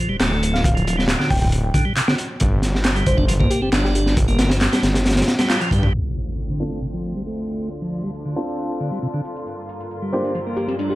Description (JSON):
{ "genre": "breakbeat, breaks", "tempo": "136 BPM", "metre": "4/4", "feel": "straight", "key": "unclear", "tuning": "A4 = 440 Hz", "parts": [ { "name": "tonewheel organ", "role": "riff", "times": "0.0-11.0 s", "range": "C3 to G4", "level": "-25 LUFS", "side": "right 1 dB", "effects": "overdrive, stopped rotary speaker, low-pass filter" }, { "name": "detuned saw bass", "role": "bass", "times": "0.1-5.9 s", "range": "D1 to G2", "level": "-21 LUFS", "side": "equal", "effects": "none" }, { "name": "crunchy breakbeat drum kit", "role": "drums", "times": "0.2-5.9 s", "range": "hi-hat, kick drum, snare drum", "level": "-19 LUFS", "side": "equal", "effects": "none" }, { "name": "punchy analog drum machine", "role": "drums", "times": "0.2-10.9 s", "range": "handclaps, hi-hat", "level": "-26 LUFS", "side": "equal", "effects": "none" }, { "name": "bell-like FM electric piano", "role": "melody", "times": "0.5-5.7, 10.1-11.0 s", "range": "F4 to G5", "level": "-28 LUFS", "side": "equal", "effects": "chorus, phaser, AM radio sound, dub echo" }, { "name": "dark studio string section", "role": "sustained chords", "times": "5.9-11.0 s", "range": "D2 to F4", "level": "-31 LUFS", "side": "equal", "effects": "vintage 12-bit sampler grit, sidechain pumping" }, { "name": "impact and riser", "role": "sound effects", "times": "5.9-11.0 s", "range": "none", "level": "-29 LUFS", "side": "equal", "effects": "none" }, { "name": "clear grand piano", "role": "stabs", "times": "6.6-10.3 s", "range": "Bb3 to A4", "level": "-28 LUFS", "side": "equal", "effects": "dub echo" } ], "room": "little or no reverb", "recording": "vinyl crackle, low-pass filter", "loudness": "-18 LUFS", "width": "side -17 dB against mid", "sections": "0.0-5.9 A section; 5.9-11.0 B section", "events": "band accent 5.5; impact 5.9-7.7; filter sweep on tonewheel organ 5.9-11.0; filter sweep 5.9-11.0; riser 10.0-11.0", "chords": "0.0 Dm; 2.4 Gm7; 5.9 Dm7; 9.5 Gm7" }